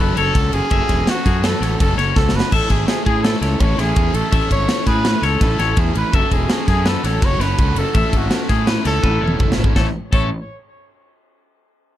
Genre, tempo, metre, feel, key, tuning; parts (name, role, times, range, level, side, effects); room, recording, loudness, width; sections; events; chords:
math rock and midwest emo; 166 BPM; 5/4; straight; A major; A4 = 440 Hz
clear trumpet; melody; 0.0-10.3 s; F#4 to C#5; -23 LUFS; right 1 dB
twangy electric guitar; arpeggios; 0.0-10.3 s; G#4 to E5; -25 LUFS; left 9 dB
overdriven electric guitar; riff; 0.0-10.3 s; A2 to A4; -25 LUFS; right 1 dB
fuzz fingered electric bass; bass; 0.0-10.3 s; E1 to A2; -20 LUFS; equal; overdrive
crisp fusion drum kit; drums; 0.2-10.2 s; crash cymbal, kick drum, ride cymbal, snare drum, toms; -18 LUFS; equal
little or no reverb; dark, warm production, lossy compression artefacts; -15 LUFS; side -12 dB against mid
0.0-9.8 A section; 9.8-11.6 B section
drum fill 2.2-2.5, 9.0-9.8
0.0 F#m7; 2.5 Amaj7; 6.1 F#m7; 9.8 A